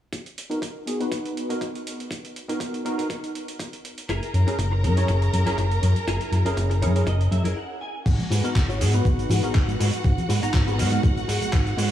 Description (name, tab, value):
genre	nu-disco, nu disco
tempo	121 BPM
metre	4/4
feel	straight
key	G# minor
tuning	A4 = 439 Hz
part	dusty soul sampler-style drum kit	drums	0.1-11.9 s	cabasa, crash cymbal, handclaps, hi-hat	-34 LUFS	right 2 dB	overdrive, studio reverb
part	electronic kick drum	drums	0.1-11.6 s	none	-24 LUFS	equal	overdrive, high-pass filter on kick, studio reverb, high-pass filter on room
part	bell-like tine electric piano	accompaniment	0.5-11.0 s	B3 to A#5	-29 LUFS	equal	analog chorus, sidechain pumping, low-pass filter, analog delay
part	warm symphonic violin section	sustained chords	4.1-11.9 s	F#4 to A#5	-31 LUFS	right 1 dB	sidechain pumping
part	direct-recorded clean electric guitar	riff	4.1-11.9 s	E4 to G#5	-33 LUFS	left 2 dB	ensemble chorus, low-pass filter, analog delay
part	fat analog bass	bass	4.1-11.9 s	F#1 to G#2	-22 LUFS	equal	sidechain pumping
part	congas	percussion	8.2-11.5 s	none	-33 LUFS	right 2 dB	none
room	light reverb, digital ambience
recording	none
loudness	-21 LUFS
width	side -11 dB against mid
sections	0.1-8.1 A section; 8.1-11.9 B section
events	filter sweep on tine electric piano 0.1-8.1; clean electric guitar fill 6.6-8.1; stop 7.6-8.1; filter sweep on clean electric guitar 8.1-11.9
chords	0.1 G#m7 (rootless); 4.1 F#9; 8.1 G#m7